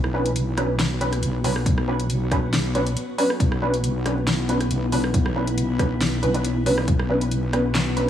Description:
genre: deep dubstep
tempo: 138 BPM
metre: 4/4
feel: swing 53% on 16ths, half-time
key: B minor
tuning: A4 = 440 Hz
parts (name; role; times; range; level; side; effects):
- granular cloud pad; sustained chords; 0.0-8.1 s; B3 to F#4; -28 LUFS; left 2 dB; built-in reverb
- wobble bass; bass; 0.0-8.1 s; B1; -24 LUFS; equal; chorus
- deep house drum kit; drums; 0.0-8.1 s; handclaps, hi-hat, rim click, snare drum; -28 LUFS; equal; overdrive, studio reverb
- filtered dub chord stab; stabs; 0.1-8.1 s; F#3 to B4; -25 LUFS; right 1 dB; ensemble chorus, dub echo
- electronic kick drum; drums; 1.7-7.0 s; none; -24 LUFS; equal; overdrive, studio reverb
room: light reverb, digital ambience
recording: vinyl crackle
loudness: -20 LUFS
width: side -10 dB against mid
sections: 0.0-8.1 A section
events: none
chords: 0.0 Bmadd9

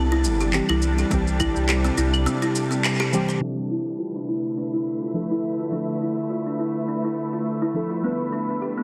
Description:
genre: organic downtempo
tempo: 104 BPM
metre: 4/4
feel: swing 55% on 16ths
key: D dorian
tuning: A4 = 440 Hz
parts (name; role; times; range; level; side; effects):
- deep mellow chord stab; accompaniment; 0.0-8.8 s; E3 to E5; -31 LUFS; equal; chorus, sidechain pumping, delay
- bowed-like drone; sustained chords; 0.0-8.8 s; C3 to E5; -30 LUFS; equal; built-in reverb, sidechain pumping
- buzzing kalimba; arpeggios; 0.0-8.8 s; B3 to C5; -28 LUFS; equal; low-pass filter, delay
- warm sub bass; bass; 0.0-2.3 s; G1 to C2; -25 LUFS; equal; sidechain pumping
- wind-like tuned noise texture; texture; 0.0-8.8 s; A4 to B5; -38 LUFS; equal; built-in reverb
- electronic shaker, handclaps and claves; drums; 0.2-8.8 s; none; -30 LUFS; equal; low-pass filter on perc, low-pass filter on snare
- electronic kick drum; drums; 1.1-1.5 s; none; -29 LUFS; equal; none
room: wet lush hall reverb, RT60 2.7 s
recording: heavily compressed radio sound, low-pass filter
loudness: -24 LUFS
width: mono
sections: 0.0-3.4 A section; 3.4-8.8 B section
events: band accent 2.8; filter sweep on synth stab 3.4-8.8; filter sweep 3.4-8.8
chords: 0.0 C; 3.4 Dmadd9; 8.0 G

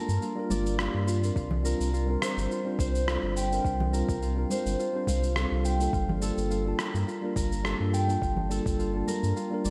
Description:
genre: sunset chillout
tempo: 105 BPM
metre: 4/4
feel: swing 54% on 16ths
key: G minor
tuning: A4 = 439 Hz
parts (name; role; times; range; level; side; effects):
- mellow tine electric piano; accompaniment; 0.0-9.7 s; G3 to A5; -34 LUFS; equal; digital delay
- Celtic harp; arpeggios; 0.0-9.7 s; F4 to G5; -35 LUFS; equal; digital delay, slapback echo
- warm sub bass; bass; 0.1-9.7 s; G1 to G2; -31 LUFS; equal; none
- electronic cabasa and rim click; drums; 0.1-9.7 s; none; -38 LUFS; equal; none
- congas; percussion; 0.5-9.7 s; none; -39 LUFS; equal; none
- electronic kick drum; drums; 1.4-8.8 s; none; -34 LUFS; equal; none
room: moderate lush hall reverb, RT60 2.4 s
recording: big arena sound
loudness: -28 LUFS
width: mono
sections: 0.0-9.7 A section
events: none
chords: 0.0 Gm9

